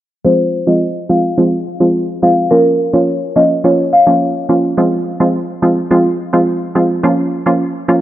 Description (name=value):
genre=dancehall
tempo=106 BPM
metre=4/4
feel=straight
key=F minor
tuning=A4 = 440 Hz
part: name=buzzing marimba with medium hard mallets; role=melody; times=0.2-4.1 s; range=Bb4 to F5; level=-14 LUFS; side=left 1 dB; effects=low-pass filter, digital delay
part: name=hollow square pluck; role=accompaniment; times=0.2-8.0 s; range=F3 to F4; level=-13 LUFS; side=right 1 dB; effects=chorus, low-pass filter
room=light reverb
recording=none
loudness=-11 LUFS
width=side -13 dB against mid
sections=0.2-8.0 A section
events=filter sweep 0.2-8.0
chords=0.2 Fm; 2.5 Bbm; 4.8 Fm; 7.0 Bbm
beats=| 0.25 0.81 1.38 1.95 | 2.51 3.08 3.64 4.21 | 4.78 5.34 5.91 6.47 | 7.04 7.61